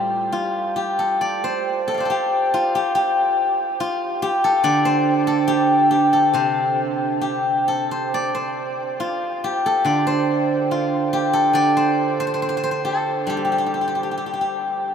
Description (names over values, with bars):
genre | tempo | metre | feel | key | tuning
chinese traditional, Chinese solo plucked strings | 70 BPM | 2/4 | uneven beats, rubato | G shang mode | A4 = 440 Hz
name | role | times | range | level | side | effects
steel-string zither | solo | 0.0-14.9 s | A2 to G5 | -18 LUFS | equal | none
room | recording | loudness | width
wet huge ambient reverb, RT60 8.7 s | in a vast, echoing space | -18 LUFS | side -7 dB against mid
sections
0.0-1.2 A section; 1.2-14.9 B section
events
none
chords
none